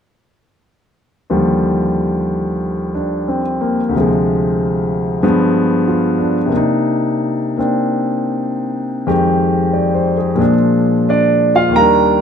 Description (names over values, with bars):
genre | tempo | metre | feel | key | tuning
solo jazz | 92 BPM | 4/4 | swing 68% on 8ths, rubato | Eb major | A4 = 441 Hz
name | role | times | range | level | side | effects
clear grand piano | solo | 1.3-12.2 s | D2 to Bb5 | -13 LUFS | equal | none
room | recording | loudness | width
wet studio reverb, RT60 0.8 s | dark, warm production | -13 LUFS | side -7 dB against mid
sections
1.3-11.7 A section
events
none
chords
1.3 Ebmaj9; 3.9 Dm7b5; 5.2 G7b9; 6.5 Cm9; 9.1 Fm9; 10.4 Bb7